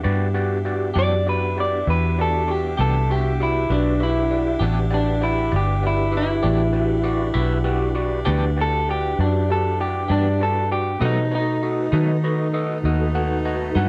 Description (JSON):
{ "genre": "slow blues", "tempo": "66 BPM (dotted quarters)", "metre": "12/8", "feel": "straight", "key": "E minor", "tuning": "A4 = 441 Hz", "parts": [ { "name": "overdriven tine electric piano", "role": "accompaniment", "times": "0.0-13.9 s", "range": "F#4 to F#5", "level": "-29 LUFS", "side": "equal", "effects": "phaser" }, { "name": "mellow saxophone section", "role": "sustained chords", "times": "0.0-13.9 s", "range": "A3 to G4", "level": "-34 LUFS", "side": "equal", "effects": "none" }, { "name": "mellow tonewheel organ", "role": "sustained chords", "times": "0.0-13.9 s", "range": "E3 to A#5", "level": "-34 LUFS", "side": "equal", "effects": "slow rotary speaker, chorus vibrato" }, { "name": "vintage muted fingered electric bass", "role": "bass", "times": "0.0-13.9 s", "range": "G1 to D#3", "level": "-24 LUFS", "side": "equal", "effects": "none" }, { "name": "semi-hollow electric guitar", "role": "accompaniment", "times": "0.9-13.9 s", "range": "B2 to G4", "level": "-30 LUFS", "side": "equal", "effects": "tremolo" }, { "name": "electric guitar through a small old amp", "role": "melody", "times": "1.0-12.5 s", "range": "D4 to D5", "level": "-25 LUFS", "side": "equal", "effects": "none" } ], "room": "digital ambience", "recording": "dry, close 1970s-style studio recording", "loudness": "-21 LUFS", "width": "mono", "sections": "0.0-13.9 A section", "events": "clean electric guitar solo 0.0-13.9", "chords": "0.0 Em7; 11.0 B7" }